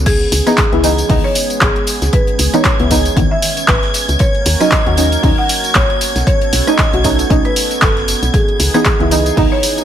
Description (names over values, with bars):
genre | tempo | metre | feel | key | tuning
deep house | 116 BPM | 4/4 | swing 57% on 16ths | C# minor | A4 = 439 Hz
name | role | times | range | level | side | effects
warm analog pad | sustained chords | 0.0-9.8 s | E3 to A#4 | -24 LUFS | right 3 dB | chorus, sidechain pumping
deep mellow chord stab | stabs | 0.0-9.8 s | D#3 to F#4 | -16 LUFS | right 1 dB | chorus, sidechain pumping, dub echo
woody FM bass | bass | 0.0-9.5 s | F#1 to D#2 | -17 LUFS | equal | sidechain pumping
marimba with medium hard mallets | melody | 0.1-9.8 s | G#4 to F#5 | -20 LUFS | equal | vintage 12-bit sampler grit, digital delay
damped 70s drum kit | drums | 0.1-9.8 s | hi-hat, snare drum | -28 LUFS | left 6 dB | sidechain pumping on hats, high-pass filter on hats, small room ambience, high-pass filter on snare, high-pass filter on room
deep house drum kit | drums | 0.1-9.8 s | crash cymbal, handclaps, hi-hat, rim click, tambourine | -17 LUFS | equal | overdrive, small room ambience
electronic kick drum | drums | 0.1-9.5 s | none | -16 LUFS | equal | small room ambience
string machine, violins | texture | 0.1-9.8 s | G#6 | -24 LUFS | equal | ensemble chorus
room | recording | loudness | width
digital ambience | none | -11 LUFS | side -10 dB against mid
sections
0.0-9.8 A section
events
none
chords
0.1 C#m9; 4.2 D#m7; 6.0 B9; 8.3 C#m9